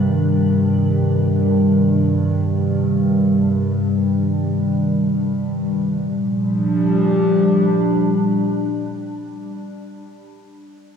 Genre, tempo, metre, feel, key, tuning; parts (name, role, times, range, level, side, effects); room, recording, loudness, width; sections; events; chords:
ambient; free time; G minor; A4 = 442 Hz
warbly tape-like pad; sustained chords; 0.0-9.3 s; G2 to G4; -16 LUFS; equal; chorus, built-in reverb, cassette tape
organ-like drone; drone; 0.0-9.3 s; G3 to D4; -32 LUFS; left 4 dB; ensemble chorus, built-in reverb, phaser, cassette tape
wet studio reverb, RT60 0.6 s; home recording on cassette; -16 LUFS; side -7 dB against mid
0.0-5.9 A section; 5.9-8.5 B section
fade-out on synth drone 0.0-5.9
0.0 Cm/G; 5.9 Gm7